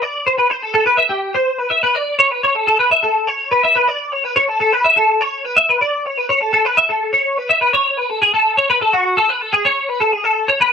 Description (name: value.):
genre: rock.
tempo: 125 BPM.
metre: 4/4.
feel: straight.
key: unclear.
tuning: A4 = 438 Hz.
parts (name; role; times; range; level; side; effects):
twelve-string electric guitar; solo; 0.0-10.7 s; F#4 to E5; -13 LUFS; left 1 dB; ensemble chorus.
room: light reverb.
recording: none.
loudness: -13 LUFS.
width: side -6 dB against mid.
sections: 0.0-7.7 A section; 7.7-10.7 B section.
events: none.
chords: none.